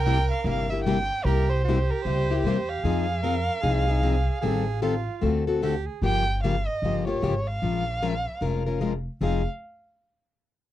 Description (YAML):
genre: acoustic string swing (jazz manouche)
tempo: 151 BPM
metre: 4/4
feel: swing 61% on 8ths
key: F minor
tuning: A4 = 438 Hz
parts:
  - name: dark violin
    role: melody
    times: 0.0-9.4 s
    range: Bb4 to G5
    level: -29 LUFS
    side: right 2 dB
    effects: none
  - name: clear soprano saxophone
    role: second line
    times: 0.0-6.0 s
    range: F4 to Bb4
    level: -32 LUFS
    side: right 8 dB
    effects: none
  - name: upright bass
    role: bass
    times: 0.0-9.4 s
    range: F1 to F2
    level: -27 LUFS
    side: equal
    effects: none
  - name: picked plugged-in steel-string acoustic guitar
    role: accompaniment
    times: 0.1-9.4 s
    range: C3 to Bb4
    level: -26 LUFS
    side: left 5 dB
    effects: none
room: light reverb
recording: dry, close 1970s-style studio recording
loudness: -23 LUFS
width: side -13 dB against mid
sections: 0.0-6.0 A section; 6.0-9.2 B section; 9.2-10.7 C section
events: none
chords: 0.0 C7; 2.8 Fm7; 4.4 Am7b5; 5.2 D7; 6.0 Gm7b5; 7.6 Bbm7; 9.2 Fm7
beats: 0.05 0.45 0.85 | 1.25 1.65 2.04 2.44 | 2.84 3.24 3.64 4.04 | 4.43 4.83 5.23 5.63 | 6.03 6.42 6.82 7.22 | 7.62 8.02 8.41 8.81 | 9.21